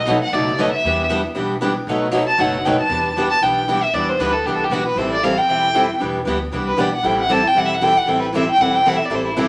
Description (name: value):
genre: acoustic string swing (jazz manouche)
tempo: 232 BPM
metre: 4/4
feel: swing 56% on 8ths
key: E minor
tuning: A4 = 439 Hz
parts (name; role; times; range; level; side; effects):
- warm violin; melody; 0.0-9.5 s; E4 to A5; -20 LUFS; equal; none
- upright bass; bass; 0.0-9.5 s; E1 to E2; -34 LUFS; equal; none
- picked steel-string acoustic guitar; accompaniment; 0.1-9.5 s; B2 to A4; -24 LUFS; equal; none
- picked steel-string acoustic guitar; accompaniment; 0.1-9.5 s; B2 to B4; -27 LUFS; equal; none
room: wet studio reverb, RT60 0.7 s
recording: none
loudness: -18 LUFS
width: mono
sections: 0.0-2.9 A section; 2.9-9.5 A section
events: violin solo 0.0-9.5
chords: 0.0 B7#9; 0.8 Em7; 1.9 B7; 2.9 Em7; 5.0 Am7; 6.0 Em7; 7.0 Am7